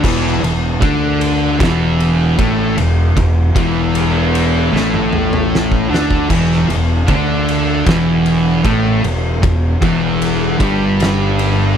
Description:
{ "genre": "stoner and doom metal", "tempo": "77 BPM", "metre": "4/4", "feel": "straight", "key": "E minor", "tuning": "A4 = 440 Hz", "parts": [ { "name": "high-gain distorted guitar", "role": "riff", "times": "0.0-11.8 s", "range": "E2 to D4", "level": "-22 LUFS", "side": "equal", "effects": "distortion" }, { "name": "thick fuzz guitar", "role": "riff", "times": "0.0-11.8 s", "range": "E2 to D4", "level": "-17 LUFS", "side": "left 5 dB", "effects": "distortion" }, { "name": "thick fuzz guitar", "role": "riff", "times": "0.0-11.8 s", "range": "E2 to D4", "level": "-19 LUFS", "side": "right 10 dB", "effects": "distortion" }, { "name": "fuzz fingered electric bass", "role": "bass", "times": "0.0-11.7 s", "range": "E1 to D2", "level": "-19 LUFS", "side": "equal", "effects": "overdrive" }, { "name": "oversized low-tuned drum kit", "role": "drums", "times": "0.0-11.6 s", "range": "crash cymbal, kick drum, ride cymbal, snare drum, toms", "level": "-19 LUFS", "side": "equal", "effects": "none" } ], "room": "little or no reverb", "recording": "none", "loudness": "-12 LUFS", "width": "side -8 dB against mid", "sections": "0.0-11.8 A section", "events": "drum fill 4.7-6.3", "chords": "0.0 Em" }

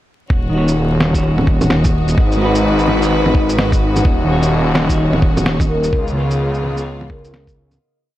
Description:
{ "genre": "future garage", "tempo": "128 BPM", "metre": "4/4", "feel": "swing 60% on 16ths", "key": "Eb minor", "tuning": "A4 = 440 Hz", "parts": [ { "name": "rich chamber string section", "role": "sustained chords", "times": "0.3-7.8 s", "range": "Db3 to Cb5", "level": "-23 LUFS", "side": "left 1 dB", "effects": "sidechain pumping" }, { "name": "swelling detuned saw bass", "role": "bass", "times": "0.3-7.8 s", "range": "Eb1 to Db2", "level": "-18 LUFS", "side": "equal", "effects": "tube saturation, sidechain pumping" }, { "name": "electronic kick drum", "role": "drums", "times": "0.3-7.5 s", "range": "none", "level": "-16 LUFS", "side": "equal", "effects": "vintage 12-bit sampler grit" }, { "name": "wind-like tuned noise texture", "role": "texture", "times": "1.6-7.8 s", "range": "Eb4 to Eb5", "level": "-25 LUFS", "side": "left 4 dB", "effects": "built-in reverb" }, { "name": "semi-hollow electric guitar", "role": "accompaniment", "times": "0.5-7.8 s", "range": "Db3 to Db5", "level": "-19 LUFS", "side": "equal", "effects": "sidechain pumping, analog delay" }, { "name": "electronic shaker, snare drum and bongos", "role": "drums", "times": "0.7-7.8 s", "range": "none", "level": "-20 LUFS", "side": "right 1 dB", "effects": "vintage 12-bit sampler grit" }, { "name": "vibraphone with soft mallets", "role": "melody", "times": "5.7-7.5 s", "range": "Ab4 to Bb4", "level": "-23 LUFS", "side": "left 1 dB", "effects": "vintage 12-bit sampler grit, tape echo" } ], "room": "light reverb", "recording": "vinyl crackle", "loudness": "-13 LUFS", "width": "side -14 dB against mid", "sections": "0.3-7.8 groove", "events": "fade-out 5.3-7.8", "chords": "0.3 Ebm7; 2.2 Abm7; 4.0 Ebm7; 5.9 Db7" }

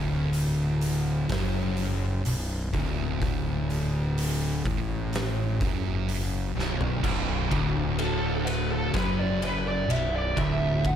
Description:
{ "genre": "stoner and doom metal", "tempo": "63 BPM", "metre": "4/4", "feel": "straight", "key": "B minor", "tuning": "A4 = 440 Hz", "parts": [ { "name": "thick fuzz guitar", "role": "riff", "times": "0.0-11.0 s", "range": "B1 to A2", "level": "-31 LUFS", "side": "left 7 dB", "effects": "distortion" }, { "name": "thick fuzz guitar", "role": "riff", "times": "0.0-11.0 s", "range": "B1 to A2", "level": "-31 LUFS", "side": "right 7 dB", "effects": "distortion" }, { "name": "fuzz fingered electric bass", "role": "bass", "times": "0.0-11.0 s", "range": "B0 to A1", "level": "-31 LUFS", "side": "equal", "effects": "overdrive" }, { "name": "oversized low-tuned drum kit", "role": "drums", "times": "0.3-11.0 s", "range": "crash cymbal, hi-hat, kick drum, ride cymbal, snare drum, toms", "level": "-32 LUFS", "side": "equal", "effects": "none" }, { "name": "biting overdriven guitar", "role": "riff", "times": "7.0-11.0 s", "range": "B1 to F#2", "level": "-34 LUFS", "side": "equal", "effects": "none" }, { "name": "fuzz lead guitar", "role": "melody", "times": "8.0-11.0 s", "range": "A4 to F#5", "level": "-30 LUFS", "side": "right 2 dB", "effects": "wah, distortion, tape echo" } ], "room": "small room ambience", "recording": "none", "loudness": "-24 LUFS", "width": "side -9 dB against mid", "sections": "0.0-7.0 A section; 7.0-11.0 B section", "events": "drum fill 6.6-7.0; lead electric guitar solo 7.0-11.0", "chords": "0.0 Bm" }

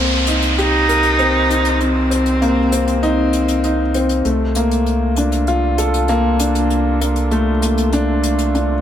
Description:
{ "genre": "piano and strings electronica", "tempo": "98 BPM", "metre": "4/4", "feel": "straight", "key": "C dorian", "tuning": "A4 = 441 Hz", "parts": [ { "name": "muted chamber string section", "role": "sustained chords", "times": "0.0-8.8 s", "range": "C3 to A4", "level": "-33 LUFS", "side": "right 2 dB", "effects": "none" }, { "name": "warm grand piano", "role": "riff", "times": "0.0-8.8 s", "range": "A3 to Bb4", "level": "-17 LUFS", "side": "left 1 dB", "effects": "tape echo" }, { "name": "round analog bass", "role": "bass", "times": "0.0-8.8 s", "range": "C2", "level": "-20 LUFS", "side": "right 1 dB", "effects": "none" }, { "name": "downlifter", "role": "sound effects", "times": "0.0-4.3 s", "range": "none", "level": "-23 LUFS", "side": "right 1 dB", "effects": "none" }, { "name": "hi-hat", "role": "drums", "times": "0.3-8.7 s", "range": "none", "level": "-28 LUFS", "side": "left 4 dB", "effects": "none" }, { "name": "rich cello", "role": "melody", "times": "0.6-3.9 s", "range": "C4 to Eb4", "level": "-18 LUFS", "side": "right 1 dB", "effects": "tape echo" } ], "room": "moderate concert hall reverb, RT60 2.3 s", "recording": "none", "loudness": "-14 LUFS", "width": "side -10 dB against mid", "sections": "0.0-8.8 A section", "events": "none", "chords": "0.0 Cm7; 4.3 Bbmaj7/C" }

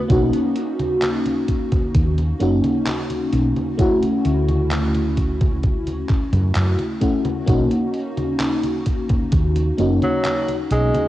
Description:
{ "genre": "vaporwave", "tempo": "65 BPM", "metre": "4/4", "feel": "straight", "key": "unclear", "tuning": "A4 = 440 Hz", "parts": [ { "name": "FM electric piano with soft pad layer", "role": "accompaniment", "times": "0.0-11.1 s", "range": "A3 to F#4", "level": "-21 LUFS", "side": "left 1 dB", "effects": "analog chorus, analog delay" }, { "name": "woody fretless electric bass", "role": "bass", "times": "0.1-10.9 s", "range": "F#1 to F#2", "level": "-20 LUFS", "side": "equal", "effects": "none" }, { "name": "detuned 8-bit digital drum machine", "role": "drums", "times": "0.1-11.1 s", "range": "congas, handclaps, hi-hat", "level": "-28 LUFS", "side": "equal", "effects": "vintage 12-bit sampler grit, cassette tape" }, { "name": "electronic kick drum", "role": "drums", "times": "0.1-9.5 s", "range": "none", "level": "-20 LUFS", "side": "equal", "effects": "vintage 12-bit sampler grit, cassette tape" }, { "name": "warm tenor saxophone", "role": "melody", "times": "10.0-11.1 s", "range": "F#3 to G#3", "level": "-24 LUFS", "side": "equal", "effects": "tape echo" } ], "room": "light reverb", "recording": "home recording on cassette", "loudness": "-17 LUFS", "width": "side -14 dB against mid", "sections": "0.0-11.1 A section", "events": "none", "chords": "0.1 Bmaj9 (rootless); 3.8 Dmaj9; 7.5 Bmaj9 (rootless)" }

